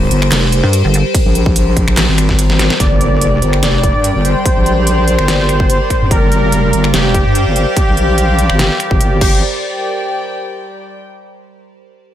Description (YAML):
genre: heavy wobble dubstep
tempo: 145 BPM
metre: 4/4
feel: swing 53% on 16ths, half-time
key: G minor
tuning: A4 = 436 Hz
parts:
  - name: evolving wavetable pad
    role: sustained chords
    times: 0.0-9.4 s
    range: G3 to D5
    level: -20 LUFS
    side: right 1 dB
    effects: phaser, built-in reverb, sidechain pumping
  - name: wobble bass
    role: bass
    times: 0.0-9.4 s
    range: F1 to G2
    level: -14 LUFS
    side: equal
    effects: chorus, overdrive
  - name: dubstep drum kit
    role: drums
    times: 0.1-9.3 s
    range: crash cymbal, finger snaps, handclaps, hi-hat, ride cymbal, snare drum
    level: -18 LUFS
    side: equal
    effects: small room reverb
  - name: pulsing pluck wobble bass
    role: bass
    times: 0.6-1.0 s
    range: G1 to G2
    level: -11 LUFS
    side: equal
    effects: chorus, overdrive
  - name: electronic kick drum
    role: drums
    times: 1.1-9.3 s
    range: none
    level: -14 LUFS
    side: equal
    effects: small room reverb
  - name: soft supersaw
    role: melody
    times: 2.8-9.4 s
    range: G4 to D5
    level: -17 LUFS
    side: equal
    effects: vintage 12-bit sampler grit, digital delay
  - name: impact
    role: sound effects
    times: 2.8-4.5 s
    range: none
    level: -23 LUFS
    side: equal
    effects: none
  - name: dark studio string section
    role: texture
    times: 2.8-11.0 s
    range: G4 to G5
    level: -23 LUFS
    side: left 1 dB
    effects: sidechain pumping
room: digital ambience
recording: none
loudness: -10 LUFS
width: side -11 dB against mid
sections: 0.0-2.8 A section; 2.8-9.4 B section; 9.4-11.1 C section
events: drop 0.0-2.8; drum fill 2.5-2.8; impact 2.8-4.5; filter sweep on wobble bass 2.8-9.4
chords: 0.0 Gm; 9.4 G5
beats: 0.32 0.73 | 1.15 1.56 1.97 2.39 | 2.80 3.21 3.63 4.04 | 4.46 4.87 5.28 5.70 | 6.11 6.52 6.94 7.35 | 7.77 8.18 8.59 9.01 | 9.42 9.84 10.25 10.66